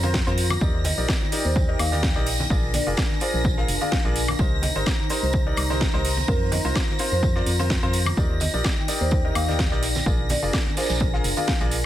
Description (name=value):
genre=piano house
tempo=127 BPM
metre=4/4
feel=swing 54% on 16ths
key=unclear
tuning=A4 = 445 Hz
part: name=string machine, violins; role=sustained chords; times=0.0-11.9 s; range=Bb6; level=-32 LUFS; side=equal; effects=ensemble chorus, sidechain pumping
part: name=clear grand piano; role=riff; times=0.0-11.7 s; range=C4 to F5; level=-30 LUFS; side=left 1 dB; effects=sidechain pumping, digital delay
part: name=organ-like FM bass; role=bass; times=0.0-11.9 s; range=F1 to F2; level=-25 LUFS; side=equal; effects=sidechain pumping
part: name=damped 70s drum kit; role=drums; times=0.0-11.8 s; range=hi-hat, snare drum, tambourine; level=-37 LUFS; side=right 4 dB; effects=sidechain pumping on hats, high-pass filter on hats, high-pass filter on snare, sidechain pumping on perc, high-pass filter on perc, high-pass filter on room
part: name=tambourine and congas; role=percussion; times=0.0-11.8 s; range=none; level=-35 LUFS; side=right 2 dB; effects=none
part: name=warbly tape-like pad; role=texture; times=0.0-11.9 s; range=D4 to Bb5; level=-32 LUFS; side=left 1 dB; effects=chorus, built-in reverb, sidechain pumping
part: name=electronic kick drum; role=drums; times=0.1-11.6 s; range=none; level=-24 LUFS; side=equal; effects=none
part: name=house drum kit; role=drums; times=0.1-11.8 s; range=hi-hat, snare drum, woodblock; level=-29 LUFS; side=equal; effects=none
part: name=marimba with soft mallets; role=melody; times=0.8-11.8 s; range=Bb4 to F5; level=-32 LUFS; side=equal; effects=digital delay
room=small room ambience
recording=none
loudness=-20 LUFS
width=side -12 dB against mid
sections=0.0-11.9 A section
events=none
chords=0.0 Fsus4; 0.6 Ebmaj7; 2.3 Bb7; 4.4 Cm7; 6.3 Fsus4; 8.2 Ebmaj7; 9.8 Bb7